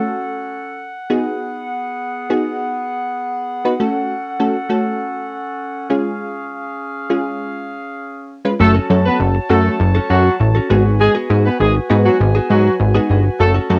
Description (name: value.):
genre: pop.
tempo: 100 BPM.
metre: 4/4.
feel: straight.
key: F# dorian.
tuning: A4 = 440 Hz.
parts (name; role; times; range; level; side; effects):
wavetable chord stab; accompaniment; 0.0-13.8 s; F#3 to B4; -21 LUFS; equal; none.
warm woodwind section; sustained chords; 0.0-13.8 s; B3 to A5; -26 LUFS; equal; none.
mellow horn section; melody; 8.6-13.5 s; F#3 to B4; -19 LUFS; equal; cassette tape, tape echo.
direct-recorded clean electric guitar; riff; 8.6-13.8 s; B3 to A4; -26 LUFS; equal; subtle chorus.
plucky analog bass; bass; 8.6-13.8 s; F#1 to G#2; -16 LUFS; equal; none.
room: light reverb.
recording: home recording on cassette.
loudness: -17 LUFS.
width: mono.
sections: 0.0-8.6 A section; 8.6-13.8 B section.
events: drop 8.6-13.8.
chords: 0.0 F#m; 1.1 G#m7; 3.8 F#m; 5.9 C#; 8.6 F#m; 10.7 G#m7.